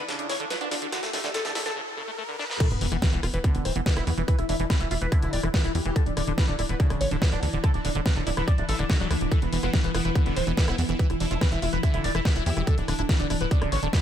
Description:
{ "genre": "psychedelic trance", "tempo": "143 BPM", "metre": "4/4", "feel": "straight", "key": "unclear", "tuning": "A4 = 440 Hz", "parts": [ { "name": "overdriven synth lead", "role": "melody", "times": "0.0-14.0 s", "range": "A3 to D5", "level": "-31 LUFS", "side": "right 1 dB", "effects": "phaser, sidechain pumping, tape echo" }, { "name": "pulsing gated texture", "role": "sustained chords", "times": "0.0-14.0 s", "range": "E3 to E4", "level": "-34 LUFS", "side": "left 2 dB", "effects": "chorus, built-in reverb, sidechain pumping" }, { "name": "liquid acid bass", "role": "riff", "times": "0.0-14.0 s", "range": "C#3 to F4", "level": "-33 LUFS", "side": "moving between left 7 dB and right 7 dB", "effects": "chorus, auto-pan, sidechain pumping, dub echo" }, { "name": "riser and sub drop", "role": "sound effects", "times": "0.0-4.3 s", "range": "none", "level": "-35 LUFS", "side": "equal", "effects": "none" }, { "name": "big-room dance drum kit", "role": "drums", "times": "0.1-14.0 s", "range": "crash cymbal, hi-hat, rim click, snare drum", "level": "-32 LUFS", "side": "equal", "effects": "high-pass filter on snare, high-pass filter on hats, high-pass filter on cymbals" }, { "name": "formant-sweep wobble bass", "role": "second line", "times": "0.6-12.7 s", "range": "B3 to G4", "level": "-42 LUFS", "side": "right 3 dB", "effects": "none" }, { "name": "electronic kick drum", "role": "drums", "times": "2.6-14.0 s", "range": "none", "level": "-23 LUFS", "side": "equal", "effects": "none" }, { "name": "tight sequencer bass", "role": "bass", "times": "2.7-13.9 s", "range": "D1 to E2", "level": "-28 LUFS", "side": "equal", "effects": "none" } ], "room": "little or no reverb", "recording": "high-pass filter", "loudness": "-23 LUFS", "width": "side -10 dB against mid", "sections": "0.0-2.6 A section; 2.6-14.0 B section", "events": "build-up 0.0-2.6; drum fill 0.0-1.8, 2.4; riser 0.0-2.6; break 1.8-2.6; drop 2.6-14.0; impact 2.6-4.3", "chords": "0.0 D5; 2.6 E5; 6.0 D5; 9.3 E5; 12.7 D5" }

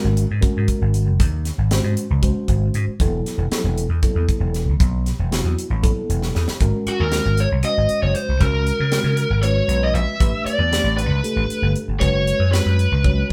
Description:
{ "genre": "electric jazz fusion", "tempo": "233 BPM (eighths)", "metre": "7/8", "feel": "straight", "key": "unclear", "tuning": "A4 = 437 Hz", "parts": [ { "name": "mellow tine electric piano", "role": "accompaniment", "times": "0.0-13.3 s", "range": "F#3 to D5", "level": "-28 LUFS", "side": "equal", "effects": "none" }, { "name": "vintage slap bass", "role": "bass", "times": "0.0-13.3 s", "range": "E1 to Db3", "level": "-22 LUFS", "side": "equal", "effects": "none" }, { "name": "crisp fusion drum kit", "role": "drums", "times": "0.2-13.3 s", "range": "hi-hat, kick drum, snare drum, toms", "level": "-24 LUFS", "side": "equal", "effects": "none" }, { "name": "lead guitar through a small cranked amp", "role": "melody", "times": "6.9-13.3 s", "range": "Gb4 to Fb5", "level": "-24 LUFS", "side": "equal", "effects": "overdrive" } ], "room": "moderate studio reverb, RT60 0.8 s", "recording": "band playing live in one room", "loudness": "-19 LUFS", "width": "mono", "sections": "0.0-6.6 A section; 6.6-13.3 B section", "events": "drum fill 6.2-6.6, 13.0", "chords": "0.0 Ab9sus4; 3.0 Esus4; 6.6 Ab9sus4; 8.4 Db7sus4; 10.2 A9sus4; 12.0 Gbsus4" }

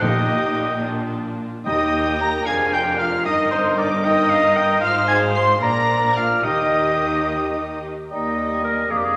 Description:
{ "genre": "quick classical-period movement for symphony orchestra", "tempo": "74 BPM (dotted quarters)", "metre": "6/8", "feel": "straight", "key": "Eb major", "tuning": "A4 = 439 Hz", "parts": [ { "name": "clear studio violin section", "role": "melody", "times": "0.0-9.2 s", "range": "G5 to C7", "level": "-36 LUFS", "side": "equal", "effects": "none" }, { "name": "bright clarinet", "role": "second line", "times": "0.0-9.2 s", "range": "Eb4 to G5", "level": "-28 LUFS", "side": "equal", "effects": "none" }, { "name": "rich studio violin section", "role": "second line", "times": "0.0-9.2 s", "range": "C5 to C6", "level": "-34 LUFS", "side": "equal", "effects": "none" }, { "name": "silver concert flute", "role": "second line", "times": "0.0-7.8 s", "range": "C5 to C6", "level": "-29 LUFS", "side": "equal", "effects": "none" }, { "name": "warm oboe", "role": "second line", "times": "0.0-9.2 s", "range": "C5 to C6", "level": "-24 LUFS", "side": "equal", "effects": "none" }, { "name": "rich studio viola section", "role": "accompaniment", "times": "0.0-9.2 s", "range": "Bb3 to C5", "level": "-29 LUFS", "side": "equal", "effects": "none" }, { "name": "mellow French horn section", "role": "sustained chords", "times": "0.0-9.2 s", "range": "Bb3 to C5", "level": "-31 LUFS", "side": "equal", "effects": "none" }, { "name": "bright studio double bass section", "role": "bass", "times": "0.0-9.2 s", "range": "F1 to Eb2", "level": "-36 LUFS", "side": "equal", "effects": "none" }, { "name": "rich studio cello section", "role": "bass", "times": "0.0-9.2 s", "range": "Eb2 to Eb3", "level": "-30 LUFS", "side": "equal", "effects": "none" }, { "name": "timpani", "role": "percussion", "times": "0.0-2.4, 6.4-7.2 s", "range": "Bb2 to Eb3", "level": "-32 LUFS", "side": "equal", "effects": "none" }, { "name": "warm bassoon", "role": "accompaniment", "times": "8.1-9.2 s", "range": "G3 to Bb3", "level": "-31 LUFS", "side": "equal", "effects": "none" } ], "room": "wet scoring stage reverb, RT60 2.0 s", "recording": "none", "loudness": "-20 LUFS", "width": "mono", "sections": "0.0-8.1 A section; 8.1-9.2 B section", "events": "none", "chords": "0.0 Eb/Bb; 0.8 Bb; 1.7 Eb; 2.5 Bb/F; 3.3 Eb/G; 4.8 Fm7/Ab; 5.6 Bb; 6.4 Eb" }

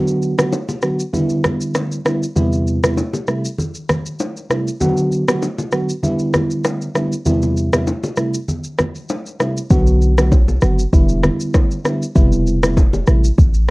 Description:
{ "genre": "afrobeats", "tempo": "98 BPM", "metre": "4/4", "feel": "swing 55% on 16ths", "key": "A dorian", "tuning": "A4 = 444 Hz", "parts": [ { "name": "mellow FM electric piano", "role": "accompaniment", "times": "0.0-13.3 s", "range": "E2 to F#4", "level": "-18 LUFS", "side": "right 1 dB", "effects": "chorus, cassette tape" }, { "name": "afro-pop drum kit", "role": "drums", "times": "0.1-13.7 s", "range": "kick drum, rim click, shaker", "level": "-17 LUFS", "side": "equal", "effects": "none" }, { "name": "bongos and congas", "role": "percussion", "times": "0.4-13.5 s", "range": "none", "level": "-23 LUFS", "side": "left 1 dB", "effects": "none" }, { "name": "warm 808-style bass", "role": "bass", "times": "9.7-13.7 s", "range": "E1 to B1", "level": "-15 LUFS", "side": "equal", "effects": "none" } ], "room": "light reverb", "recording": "home recording on cassette", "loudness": "-15 LUFS", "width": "side -23 dB against mid", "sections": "0.0-13.7 A section", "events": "break 0.0-9.7", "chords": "0.0 Bm; 1.1 Em7; 2.4 Cmaj7/E; 3.3 Am7; 4.8 Bm; 6.0 Em7; 7.3 Cmaj7/E; 8.2 Am7; 9.7 Bm; 10.9 Em7; 12.2 Cmaj7/E; 13.1 Am7" }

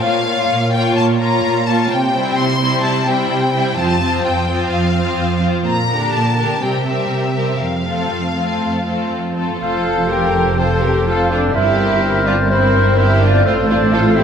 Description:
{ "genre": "classical, dramatic, fast romantic movement for symphony orchestra", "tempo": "126 BPM", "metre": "4/4", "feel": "rubato", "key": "F major", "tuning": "A4 = 440 Hz", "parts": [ { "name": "warm symphonic violin section", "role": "melody", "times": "0.0-14.2 s", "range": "C4 to C6", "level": "-21 LUFS", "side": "left 3 dB", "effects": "none" }, { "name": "rich symphonic violin section", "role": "second line", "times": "0.0-14.2 s", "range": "E4 to Db5", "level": "-22 LUFS", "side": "left 2 dB", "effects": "none" }, { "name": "rich symphonic viola section", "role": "accompaniment", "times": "0.0-14.2 s", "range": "D3 to A4", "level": "-22 LUFS", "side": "right 1 dB", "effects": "none" }, { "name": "warm symphonic cello section", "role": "bass", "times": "0.0-14.2 s", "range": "F2 to C3", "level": "-19 LUFS", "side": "right 2 dB", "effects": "none" }, { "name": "clear oboe", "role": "second line", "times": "9.6-14.2 s", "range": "C5", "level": "-23 LUFS", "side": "equal", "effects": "none" }, { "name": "large flute ensemble", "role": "second line", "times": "9.6-14.2 s", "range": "C5 to A5", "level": "-20 LUFS", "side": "equal", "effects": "none" }, { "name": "warm clarinet", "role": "second line", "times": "9.6-14.2 s", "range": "A4 to Bb4", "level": "-23 LUFS", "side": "left 3 dB", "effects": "none" }, { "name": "warm French horn section", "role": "sustained chords", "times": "9.6-14.2 s", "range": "C4 to Bb4", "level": "-22 LUFS", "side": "left 5 dB", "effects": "none" }, { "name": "rich symphonic double bass section", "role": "bass", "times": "9.6-14.2 s", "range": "F1 to A1", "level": "-20 LUFS", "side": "right 2 dB", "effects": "none" } ], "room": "wet concert hall reverb, RT60 2.5 s", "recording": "none", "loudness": "-14 LUFS", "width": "side -7 dB against mid", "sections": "0.0-9.6 A section; 9.6-14.2 A section", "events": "none", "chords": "0.0 Bbm; 1.9 C; 3.8 F; 5.7 Gm/Bb; 6.6 C7; 7.6 F; 11.6 C7/G; 13.5 F/A" }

